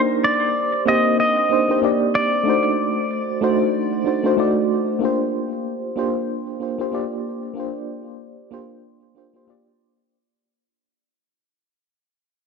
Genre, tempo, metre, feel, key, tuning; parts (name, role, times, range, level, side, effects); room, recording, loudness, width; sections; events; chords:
chillout; 94 BPM; 4/4; swing 58% on 16ths; A4 = 440 Hz
mellow FM electric piano; accompaniment; 0.0-10.1 s; A3 to D5; -20 LUFS; equal; chorus, tremolo, auto-pan, digital delay
pedal steel guitar; melody; 0.2-4.3 s; D5 to Eb5; -20 LUFS; equal; digital delay
moderate plate reverb, RT60 2.9 s; -18 LUFS; side -5 dB against mid
0.0-5.0 A section; 5.0-10.1 B section
fade-out 5.0-10.1
0.0 Cm9; 2.5 D7b9; 5.0 Bb69